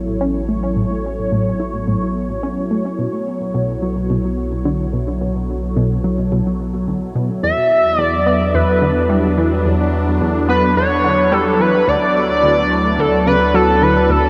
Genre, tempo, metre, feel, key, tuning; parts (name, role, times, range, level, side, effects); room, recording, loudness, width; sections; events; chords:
ambient, sequencer-driven space music; 108 BPM; 4/4; straight; A4 = 440 Hz
phased analog pad; sustained chords; 0.0-14.3 s; F#3 to C#5; -22 LUFS; equal; phaser, chorus
round analog bass; bass; 0.0-14.3 s; A1 to E2; -26 LUFS; equal
tight sequenced synth; riff; 0.2-14.2 s; D2 to E4; -24 LUFS; equal; chorus, tape echo
pulse-width lead; melody; 7.4-14.3 s; A4 to E5; -17 LUFS; equal; chorus, tape echo
wet huge ambient reverb, RT60 8.4 s; cassette tape; -17 LUFS; mono
0.0-14.3 A section
filter sweep on synth arpeggio sound 0.0-14.3
0.0 A; 3.0 B7(no3); 7.4 E7(no3); 11.9 Dsus2